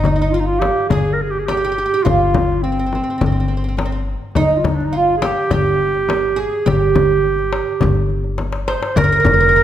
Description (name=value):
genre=Arabic maqam ensemble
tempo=104 BPM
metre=4/4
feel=straight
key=G maqam kurd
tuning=A4 = 440 Hz
part: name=mellow clarinet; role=melody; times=0.0-9.6 s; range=C4 to C5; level=-18 LUFS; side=right 2 dB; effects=none
part: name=oud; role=second line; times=0.0-9.6 s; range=C4 to C5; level=-21 LUFS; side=right 4 dB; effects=none
part: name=upright bass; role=bass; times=0.0-9.6 s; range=F1 to G1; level=-22 LUFS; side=left 1 dB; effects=none
part: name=darbuka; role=percussion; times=0.0-9.4 s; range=none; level=-21 LUFS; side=left 4 dB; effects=none
part: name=frame drum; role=percussion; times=0.0-9.4 s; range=none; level=-24 LUFS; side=left 3 dB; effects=none
room=wet recital hall reverb, RT60 1.5 s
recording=none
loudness=-14 LUFS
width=side -11 dB against mid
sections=0.0-9.0 A section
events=drum fill 8.4-9.0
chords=none